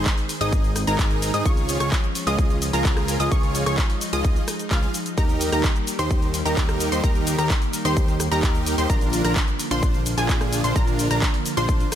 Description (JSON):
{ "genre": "EDM, festival progressive house", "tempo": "129 BPM", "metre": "4/4", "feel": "straight", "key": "unclear", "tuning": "A4 = 438 Hz", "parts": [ { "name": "lush unison pad", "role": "sustained chords", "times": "0.0-12.0 s", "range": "D3 to Eb4", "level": "-30 LUFS", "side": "equal", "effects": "chorus, sidechain pumping" }, { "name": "wide unison pluck", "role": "arpeggios", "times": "0.0-11.9 s", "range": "Ab5 to F6", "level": "-29 LUFS", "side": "left 1 dB", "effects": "sidechain pumping, ping-pong delay" }, { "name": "dense compressed supersaw", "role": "riff", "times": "0.0-11.9 s", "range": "D4 to F5", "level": "-26 LUFS", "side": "right 1 dB", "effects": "sidechain pumping, ping-pong delay" }, { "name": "fat analog bass", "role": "bass", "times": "0.0-11.8 s", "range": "Ab1 to Ab2", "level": "-26 LUFS", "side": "equal", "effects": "sidechain pumping" }, { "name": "big-room dance drum kit", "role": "drums", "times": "0.1-12.0 s", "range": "handclaps, hi-hat, rim click, shaker", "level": "-28 LUFS", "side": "equal", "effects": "studio reverb" }, { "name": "electronic kick drum", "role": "drums", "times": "0.1-11.8 s", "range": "none", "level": "-21 LUFS", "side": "equal", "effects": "studio reverb" } ], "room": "light reverb", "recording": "none", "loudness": "-19 LUFS", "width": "side -10 dB against mid", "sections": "0.0-12.0 A section", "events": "none", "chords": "0.0 Ab; 1.5 Db; 5.2 Eb; 8.9 Bb", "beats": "0.06 0.53 0.99 | 1.46 1.92 2.38 2.85 | 3.32 3.78 4.25 4.71 | 5.18 5.64 6.11 6.57 | 7.04 7.50 7.97 8.43 | 8.90 9.36 9.83 10.29 | 10.76 11.22 11.69" }